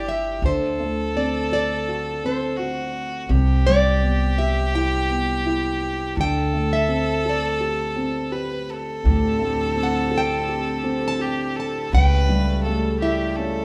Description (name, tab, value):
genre	acoustic folk-pop ballad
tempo	83 BPM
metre	4/4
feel	straight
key	unclear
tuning	A4 = 440 Hz
part	nylon-string guitar	melody	0.0-13.6 s	C5 to A5	-28 LUFS	equal	none
part	clear violin	second line	0.0-13.6 s	F#4 to B4	-29 LUFS	equal	none
part	felt-muted upright piano	accompaniment	0.0-13.6 s	A2 to B4	-28 LUFS	equal	none
part	upright bass	bass	0.0-13.6 s	G1 to D2	-26 LUFS	equal	none
part	pedal harmonium	sustained chords	9.0-13.6 s	C#3 to G4	-32 LUFS	equal	none
room	moderate large studio reverb, RT60 1.1 s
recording	band playing live in one room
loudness	-22 LUFS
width	mono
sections	0.0-13.6 A section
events	none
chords	0.4 D7; 3.3 Cmaj7; 6.2 D7sus4; 11.9 A7/C#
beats	| 0.41 1.13 1.85 2.57 | 3.29 4.01 4.73 5.45 | 6.17 6.89 7.61 8.32 | 9.04 9.77 10.48 11.20 | 11.92 12.64 13.36